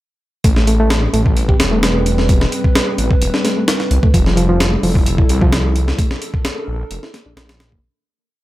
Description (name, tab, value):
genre	breakbeat, breaks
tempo	130 BPM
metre	4/4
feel	straight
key	unclear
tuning	A4 = 440 Hz
part	dark analog pad	sustained chords	1.1-7.8 s	G3 to B4	-22 LUFS	left 1 dB	chorus, sidechain pumping
part	bright reed electric piano	riff	0.4-7.8 s	F3 to G4	-20 LUFS	equal	overdrive, digital delay
part	detuned saw bass	bass	0.4-7.8 s	E1 to C2	-17 LUFS	equal	none
part	breakbeat sampler-style drum kit	drums	0.4-7.8 s	hi-hat, kick drum, snare drum	-15 LUFS	equal	none
room	digital ambience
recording	none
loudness	-12 LUFS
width	side -16 dB against mid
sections	0.4-7.8 drop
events	drop 0.4-7.8; fade-out 5.4-7.8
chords	0.4 Am9; 4.1 Fmaj9; 6.0 Bbmaj7